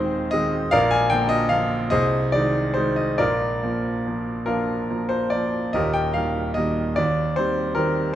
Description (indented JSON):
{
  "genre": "classical, romantic character piece for solo piano",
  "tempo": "46-51 BPM (dotted quarters)",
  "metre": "6/8",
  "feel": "rubato",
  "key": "unclear",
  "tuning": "A4 = 440 Hz",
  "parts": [
    { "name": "clear concert grand piano", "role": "solo", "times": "0.0-8.2 s", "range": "Eb1 to Ab5", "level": "-20 LUFS", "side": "equal", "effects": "none" }
  ],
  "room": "wet recital hall reverb, RT60 1.8 s",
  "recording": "none",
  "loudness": "-20 LUFS",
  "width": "side -11 dB against mid",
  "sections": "0.0-8.2 A section",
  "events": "none",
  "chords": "0.0 Ab/Eb; 0.7 Bb; 1.9 Ab/C; 3.2 Bb; 5.7 Eb; 7.0 Cm/Eb"
}